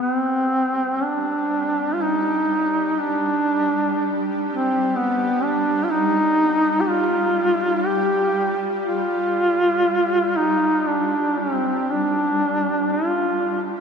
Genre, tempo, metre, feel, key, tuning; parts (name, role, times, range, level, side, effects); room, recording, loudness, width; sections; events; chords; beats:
caucasian folk, Caucasian lament; 60 BPM; 3/4; rubato; A4 = 440 Hz
warm duduk; melody; 0.0-13.6 s; B3 to G4; -19 LUFS; equal
shimmering ambient pad; drone; 0.8-13.8 s; G3; -28 LUFS; equal; chorus, built-in reverb
wet cathedral reverb, RT60 6.0 s; in a vast, echoing space; -18 LUFS; side -6 dB against mid
0.0-13.8 A section
1.01 2.01 | 2.98 3.97 4.95 | 5.91 6.88 7.87 | 8.87 9.87 10.88 | 11.91 12.93